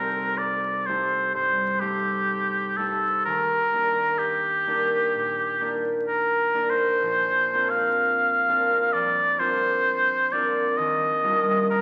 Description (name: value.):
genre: classical, impressionist duo for oboe and harp.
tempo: 64 BPM.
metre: 4/4.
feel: rubato.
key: unclear.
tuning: A4 = 440 Hz.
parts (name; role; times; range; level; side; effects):
clear oboe; melody; 0.0-11.8 s; G4 to F5; -24 LUFS; equal; none.
concert harp; accompaniment; 0.0-11.8 s; Bb1 to Eb5; -30 LUFS; equal; none.
room: wet scoring stage reverb, RT60 1.7 s.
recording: very old 78 rpm record, vinyl crackle.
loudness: -23 LUFS.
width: mono.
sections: 0.0-11.8 A section.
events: none.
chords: 0.0 Cm6; 3.3 Ebmaj7; 7.0 Bbadd9; 10.8 Ebmaj9.